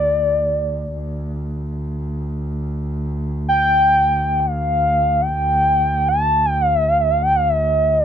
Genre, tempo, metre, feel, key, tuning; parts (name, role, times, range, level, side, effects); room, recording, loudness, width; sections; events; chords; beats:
Arabic maqam ensemble; free time; D maqam bayati; A4 = 440 Hz
gliding portamento lead; melody; 0.0-8.0 s; D5 to A5; -16 LUFS; equal; chorus
clear double bass; drone; 0.0-8.0 s; D2; -23 LUFS; equal
light reverb; close, detailed microphones; -16 LUFS; side -9 dB against mid
0.0-8.0 A section
free time